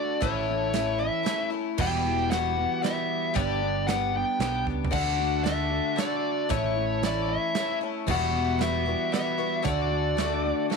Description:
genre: folk rock and heartland rock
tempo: 115 BPM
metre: 3/4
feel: straight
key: D major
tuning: A4 = 440 Hz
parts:
  - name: smooth overdriven lead guitar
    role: melody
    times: 0.0-10.7 s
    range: C#5 to G5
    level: -29 LUFS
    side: left 1 dB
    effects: none
  - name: picked twelve-string acoustic guitar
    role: accompaniment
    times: 0.0-10.8 s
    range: E2 to G4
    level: -30 LUFS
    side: left 13 dB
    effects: none
  - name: mellow electric guitar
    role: riff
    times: 0.0-10.8 s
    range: E2 to G4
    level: -33 LUFS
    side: right 12 dB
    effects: none
  - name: picked electric bass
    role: bass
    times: 0.2-10.5 s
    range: E1 to D2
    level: -31 LUFS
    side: equal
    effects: none
  - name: natural country drum kit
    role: drums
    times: 0.2-10.8 s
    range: crash cymbal, hi-hat, kick drum, snare drum, toms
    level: -32 LUFS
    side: right 6 dB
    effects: none
  - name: accordion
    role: sustained chords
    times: 4.9-10.8 s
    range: A4 to D6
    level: -40 LUFS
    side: right 12 dB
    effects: none
room: light reverb, small room reverb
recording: 1960s-style stereo with parts hard left and right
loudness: -24 LUFS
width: side -4 dB against mid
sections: 0.0-10.8 A section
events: drum fill 4.7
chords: 0.2 A; 1.8 Emadd9; 3.4 G; 4.9 D; 6.5 A; 8.1 Emadd9; 9.7 D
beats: | 0.23 0.75 1.27 | 1.80 2.32 2.84 | 3.37 3.89 4.41 | 4.94 5.46 5.98 | 6.51 7.03 7.55 | 8.08 8.60 9.13 | 9.65 10.18 10.70

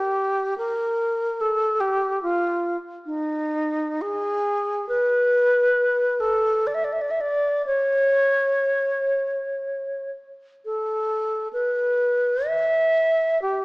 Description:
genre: classical, free, expressive piece for unaccompanied alto flute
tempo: 52-75 BPM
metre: 3/4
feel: rubato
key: unclear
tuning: A4 = 436 Hz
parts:
  - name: alto flute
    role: solo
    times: 0.0-13.6 s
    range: Eb4 to E5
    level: -20 LUFS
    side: equal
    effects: none
room: moderate scoring stage reverb, RT60 1.5 s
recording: small speaker sound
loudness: -20 LUFS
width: side -27 dB against mid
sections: 0.0-10.6 A section; 10.6-13.6 B section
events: none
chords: none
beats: 0.59 1.41 | 2.23 3.06 4.03 | 4.91 5.77 6.66 | 7.65 8.66 9.61 | 10.65 11.52 12.48 | 13.43

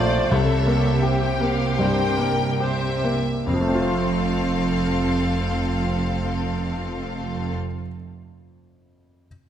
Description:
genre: classical, romantic movement for piano and orchestra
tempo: 66-87 BPM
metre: 4/4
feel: rubato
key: F major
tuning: A4 = 444 Hz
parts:
  - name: bright baby grand piano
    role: melody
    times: 0.0-9.3 s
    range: A1 to C5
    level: -25 LUFS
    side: left 1 dB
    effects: none
  - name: clear chamber violin section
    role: melody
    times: 0.0-7.5 s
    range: D5 to G5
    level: -30 LUFS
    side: left 6 dB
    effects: none
  - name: rich chamber violin section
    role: second line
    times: 0.0-7.5 s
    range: F4 to D5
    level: -29 LUFS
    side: left 4 dB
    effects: none
  - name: rich chamber viola section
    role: accompaniment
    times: 0.0-7.5 s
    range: C4 to C5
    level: -29 LUFS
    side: right 1 dB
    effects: none
  - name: clear chamber double bass section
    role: bass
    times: 0.0-7.5 s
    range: F1 to C2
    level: -27 LUFS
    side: right 3 dB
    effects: none
  - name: rich chamber cello section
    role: bass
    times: 0.0-7.5 s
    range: F2 to C3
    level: -27 LUFS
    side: right 2 dB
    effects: none
  - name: timpani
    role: percussion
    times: 0.3-7.6 s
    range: F2 to C3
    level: -29 LUFS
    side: left 2 dB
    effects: none
room: wet scoring stage reverb, RT60 1.7 s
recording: none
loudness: -20 LUFS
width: side -10 dB against mid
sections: 0.0-3.5 A section; 3.5-6.8 B section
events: slowing down 0.0-3.5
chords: 0.3 C7b9; 3.5 F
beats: | 0.31 1.03 1.79 2.60 | 3.47 4.30 5.14 5.96

